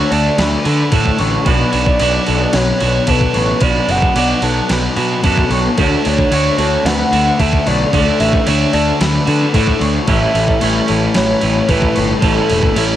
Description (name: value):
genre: rock, shoegaze and dream pop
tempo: 112 BPM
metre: 4/4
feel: straight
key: D major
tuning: A4 = 440 Hz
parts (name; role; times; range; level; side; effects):
- pure sine lead; melody; 0.0-13.0 s; A4 to F#5; -20 LUFS; equal; chorus, cassette tape, analog delay
- electric guitar through a small old amp; arpeggios; 0.0-13.0 s; A4 to D5; -23 LUFS; left 1 dB; analog chorus, cassette tape, analog delay
- biting overdriven guitar; riff; 0.0-13.0 s; A2 to F#4; -20 LUFS; right 8 dB; reverse reverb, cassette tape
- thick fuzz guitar; riff; 0.0-13.0 s; A2 to D4; -19 LUFS; left 6 dB; distortion, wide subtle chorus, cassette tape
- fuzz picked electric bass; bass; 0.1-12.9 s; E1 to D3; -17 LUFS; equal; overdrive
- crisp 8-bit digital drum machine; drums; 0.1-12.9 s; crash cymbal, kick drum, snare drum; -19 LUFS; right 1 dB; cassette tape
room: light reverb, digital ambience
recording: home recording on cassette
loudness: -12 LUFS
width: side -12 dB against mid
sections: 0.0-13.0 A section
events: none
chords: 0.0 Dmaj7; 1.5 Bm7; 5.8 Dmaj7; 10.1 A7